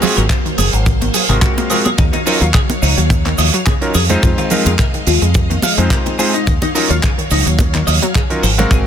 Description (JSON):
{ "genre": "nu-disco, nu disco", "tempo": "107 BPM", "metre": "4/4", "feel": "swing 54% on 16ths", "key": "Eb dorian", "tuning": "A4 = 442 Hz", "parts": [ { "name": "clear electric grand piano", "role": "accompaniment", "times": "0.0-8.9 s", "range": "Gb3 to F5", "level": "-20 LUFS", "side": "equal", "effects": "dub echo" }, { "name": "string machine, full ensemble", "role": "sustained chords", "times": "0.0-8.9 s", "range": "Gb3 to F5", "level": "-23 LUFS", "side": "equal", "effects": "ensemble chorus, vintage 12-bit sampler grit, sidechain pumping" }, { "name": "wide unison pluck", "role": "arpeggios", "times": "0.0-8.8 s", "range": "C3 to Bb3", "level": "-23 LUFS", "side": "left 3 dB", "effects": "sidechain pumping, ping-pong delay" }, { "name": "twelve-string electric guitar", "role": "riff", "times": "0.0-8.8 s", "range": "Eb4 to F5", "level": "-22 LUFS", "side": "left 3 dB", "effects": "lush chorus, dub echo" }, { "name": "tight funk drum kit", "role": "drums", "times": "0.0-8.8 s", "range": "handclaps, hi-hat", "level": "-19 LUFS", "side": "right 5 dB", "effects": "soft clipping on snare" }, { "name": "congas and cabasa", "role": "percussion", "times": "0.0-8.8 s", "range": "none", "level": "-22 LUFS", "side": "right 4 dB", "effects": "none" }, { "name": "fingered electric bass with an envelope filter", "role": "bass", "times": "0.2-8.8 s", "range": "Gb1 to F2", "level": "-15 LUFS", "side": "equal", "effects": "none" }, { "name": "kick drum", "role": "drums", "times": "0.3-8.8 s", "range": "none", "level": "-15 LUFS", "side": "equal", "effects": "soft clipping on kick" } ], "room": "little or no reverb", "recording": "dense, heavily limited modern master", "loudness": "-12 LUFS", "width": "side -9 dB against mid", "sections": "0.0-8.9 A section", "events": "none", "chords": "0.0 Ab13; 2.0 Ebm9; 3.9 Fm7; 6.5 Ebm9" }